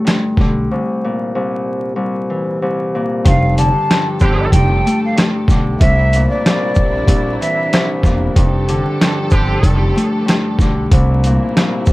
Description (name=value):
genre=hip hop, boom-bap hip-hop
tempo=94 BPM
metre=4/4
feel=swing 61% on 16ths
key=F major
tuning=A4 = 439 Hz
part: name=Celtic harp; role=accompaniment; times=0.0-11.9 s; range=C2 to A3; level=-18 LUFS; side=left 1 dB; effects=cassette tape, high-pass filter, low-pass filter, plate reverb
part: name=dusty soul sampler-style drum kit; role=drums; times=0.1-11.9 s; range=hi-hat, kick drum, rim click, shaker, snare drum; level=-14 LUFS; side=equal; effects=overdrive
part: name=upright bass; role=bass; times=0.4-11.9 s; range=E1 to C2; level=-16 LUFS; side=equal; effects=none
part: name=dark studio string section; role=sustained chords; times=3.2-11.9 s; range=C3 to A4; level=-26 LUFS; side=right 1 dB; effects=high-pass filter, low-pass filter
part: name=breathy mellow jazz flute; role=melody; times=3.3-7.9 s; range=D5 to A5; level=-19 LUFS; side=equal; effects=high-pass filter, low-pass filter, digital delay
part: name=warm horn section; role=stabs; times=4.2-4.5, 9.3-9.8 s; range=D3 to G4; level=-23 LUFS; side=right 2 dB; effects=high-pass filter, low-pass filter, digital delay, plate reverb
room=light reverb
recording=vinyl crackle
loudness=-12 LUFS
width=side -19 dB against mid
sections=0.0-3.3 A section; 3.3-11.9 B section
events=break 0.7-3.3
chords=0.0 F69 (rootless); 0.7 C7; 3.3 F69; 5.8 C9; 8.4 F69; 10.9 C9